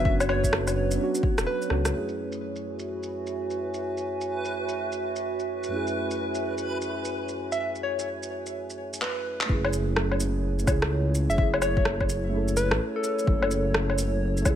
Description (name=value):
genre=future garage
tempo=127 BPM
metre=4/4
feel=swing 64% on 16ths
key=F# minor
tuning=A4 = 441 Hz
part: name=muted felt-like synth keys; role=accompaniment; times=0.0-14.6 s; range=F#2 to A4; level=-32 LUFS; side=right 2 dB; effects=chorus, sidechain pumping, low-pass filter, dub echo
part: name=warbly tape-like pad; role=sustained chords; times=0.0-14.6 s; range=F#3 to G#5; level=-33 LUFS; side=right 2 dB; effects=chorus, built-in reverb, sidechain pumping
part: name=dark detuned saw bass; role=bass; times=0.0-1.9, 9.5-14.6 s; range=E1 to C#2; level=-27 LUFS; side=equal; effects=none
part: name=soft struck synth lead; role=melody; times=0.1-1.9, 7.5-13.6 s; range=A4 to E5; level=-31 LUFS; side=left 2 dB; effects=chorus, digital delay
part: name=electronic kick drum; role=drums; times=0.1-1.4, 9.5-14.6 s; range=none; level=-26 LUFS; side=equal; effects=overdrive
part: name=electronic shaker, woodblock, rim click and handclaps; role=drums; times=0.2-14.6 s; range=none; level=-29 LUFS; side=left 1 dB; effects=overdrive, low-pass filter on perc, low-pass filter on snare, low-pass filter on room
part: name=backwards swelling texture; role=texture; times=3.5-9.0 s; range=B4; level=-38 LUFS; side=equal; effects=built-in reverb
room=moderate lush hall reverb, RT60 2.1 s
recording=none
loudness=-24 LUFS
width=side -10 dB against mid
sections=0.0-1.9 A section; 1.9-9.5 B section; 9.5-14.6 C section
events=drum fill 1.7, 9.0-9.5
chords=0.0 Bmadd9/F#; 1.9 F#m7